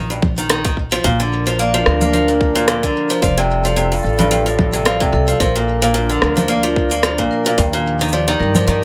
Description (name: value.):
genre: folktronica.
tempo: 110 BPM.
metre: 4/4.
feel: swing 56% on 16ths.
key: Bb major.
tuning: A4 = 439 Hz.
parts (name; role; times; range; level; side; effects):
picked acoustic archtop guitar; arpeggios; 0.0-8.8 s; G2 to Bb3; -20 LUFS; equal; delay.
upright bass; bass; 0.0-8.8 s; F1 to G2; -23 LUFS; equal; none.
electronic cabasa, congas and rim click; drums; 0.1-8.8 s; none; -23 LUFS; equal; none.
electronic kick drum; drums; 0.2-7.7 s; none; -22 LUFS; equal; none.
warbly tape-like pad; sustained chords; 1.0-8.8 s; F3 to Bb4; -26 LUFS; equal; chorus, built-in reverb.
vibraphone with medium hard mallets; second line; 1.6-8.8 s; A4 to D5; -23 LUFS; equal; delay.
room: light reverb.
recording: none.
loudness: -16 LUFS.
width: mono.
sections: 0.0-8.8 A section.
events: none.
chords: 0.0 Eb5; 1.0 Bb; 3.2 Fadd9; 5.4 Bb; 7.6 Ebadd9.